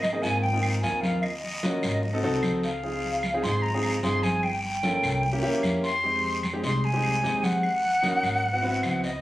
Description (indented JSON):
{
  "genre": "Afro-Cuban jazz",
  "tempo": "150 BPM",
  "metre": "4/4",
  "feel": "straight",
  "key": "Ab major",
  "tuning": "A4 = 440 Hz",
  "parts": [
    { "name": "jazz flute", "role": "melody", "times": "0.0-9.2 s", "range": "Eb5 to C6", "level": "-27 LUFS", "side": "equal", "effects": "none" },
    { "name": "upright bass", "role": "bass", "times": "0.0-9.2 s", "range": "G1 to Ab2", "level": "-31 LUFS", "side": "equal", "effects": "none" },
    { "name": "claves", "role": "percussion", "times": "0.0-9.0 s", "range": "none", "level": "-36 LUFS", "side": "right 1 dB", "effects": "none" },
    { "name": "congas", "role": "percussion", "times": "0.0-9.2 s", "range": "none", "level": "-32 LUFS", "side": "equal", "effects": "none" },
    { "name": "guiro", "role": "percussion", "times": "0.0-9.2 s", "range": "none", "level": "-37 LUFS", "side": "left 1 dB", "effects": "none" },
    { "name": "warm concert grand piano", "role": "accompaniment", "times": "0.1-9.1 s", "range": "Ab3 to A4", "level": "-29 LUFS", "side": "equal", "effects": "none" }
  ],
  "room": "moderate studio reverb, RT60 0.5 s",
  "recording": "recorded on a phone in the room, club reverb, compression",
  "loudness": "-23 LUFS",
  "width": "side -15 dB against mid",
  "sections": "0.0-9.2 A section",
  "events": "none",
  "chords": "0.0 Ab6; 1.2 Ebm7; 2.0 Ab7b9; 2.8 Dbmaj7; 4.4 Gm7b5; 5.2 C7b9; 6.0 Fm7; 7.6 Ebm7; 8.4 Ab7alt"
}